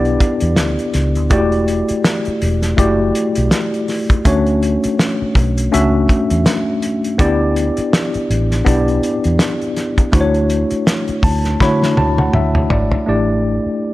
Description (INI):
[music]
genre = lush 1970s-style soul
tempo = 82 BPM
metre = 4/4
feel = swing 58% on 16ths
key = D major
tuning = A4 = 442 Hz
[part]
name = mellow tine electric piano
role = accompaniment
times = 0.0-13.9 s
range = A3 to B5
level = -16 LUFS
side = left 1 dB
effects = medium stereo tremolo
[part]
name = vintage muted fingered electric bass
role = bass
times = 0.0-13.7 s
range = E1 to D3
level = -18 LUFS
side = equal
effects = none
[part]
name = cloth-damped thuddy drum kit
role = drums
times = 0.1-13.1 s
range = hi-hat, kick drum, snare drum, toms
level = -17 LUFS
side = equal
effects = none
[sound]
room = light reverb, small room ambience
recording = lossy compression artefacts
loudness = -13 LUFS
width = side -17 dB against mid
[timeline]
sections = 0.0-13.1 A section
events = tine electric piano fill 10.9-13.1; drum fill 11.6-13.1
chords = 0.0 G6; 1.3 Em11; 4.3 Dmaj7; 7.2 G6; 10.1 Dmaj9; 13.1 A7sus4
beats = 0.57 | 1.31 2.04 2.78 3.52 | 4.25 4.99 5.72 6.46 | 7.19 7.93 8.66 9.40 | 10.13 10.87 11.60 12.34 | 13.07 13.81